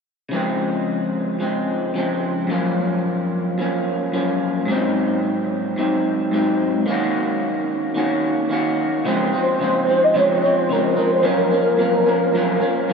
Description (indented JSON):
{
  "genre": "indie pop",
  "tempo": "110 BPM",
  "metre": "4/4",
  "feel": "straight",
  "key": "unclear",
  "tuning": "A4 = 442 Hz",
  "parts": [
    { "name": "electric guitar through a small old amp", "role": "accompaniment", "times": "0.3-12.9 s", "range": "Gb2 to Gb4", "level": "-19 LUFS", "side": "equal", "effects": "wide subtle chorus, vibrato effect" },
    { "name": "warm velvety synth lead", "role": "melody", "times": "9.4-12.9 s", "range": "Bb4 to Eb5", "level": "-17 LUFS", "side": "equal", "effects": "ensemble chorus, ping-pong delay" }
  ],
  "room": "wet huge ambient reverb, RT60 8.2 s",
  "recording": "dreamy mix soaked in reverb",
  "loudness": "-18 LUFS",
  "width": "side -5 dB against mid",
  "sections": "0.3-9.0 A section; 9.0-12.9 B section",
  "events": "none",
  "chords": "0.3 Dbmaj7; 2.5 Gbmaj7; 4.7 Ab7; 6.9 Ebm7; 9.0 Dbmaj7; 11.2 Gbmaj7"
}